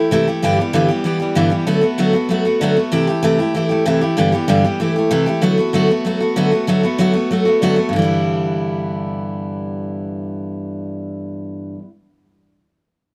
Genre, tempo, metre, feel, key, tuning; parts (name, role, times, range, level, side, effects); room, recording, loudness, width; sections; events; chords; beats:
rock; 192 BPM; 4/4; straight; G major; A4 = 440 Hz
picked steel-string acoustic guitar; solo; 0.0-11.9 s; G2 to G4; -18 LUFS; equal
light reverb; -17 LUFS; mono
0.0-6.7 A section; 6.7-7.9 B section; 7.9-10.4 C section
0.4 G6; 1.7 D6; 2.9 C6; 4.2 G6; 4.8 C6; 5.4 D6; 7.9 G6
0.11 | 0.42 0.73 1.05 1.36 | 1.67 1.99 2.30 2.61 | 2.92 3.24 3.55 3.86 | 4.17 4.49 4.80 5.11 | 5.42 5.74 6.05 6.36 | 6.68 6.99 7.30 7.62 | 7.93 8.24 8.56 8.87 | 9.19 9.50 9.81 10.13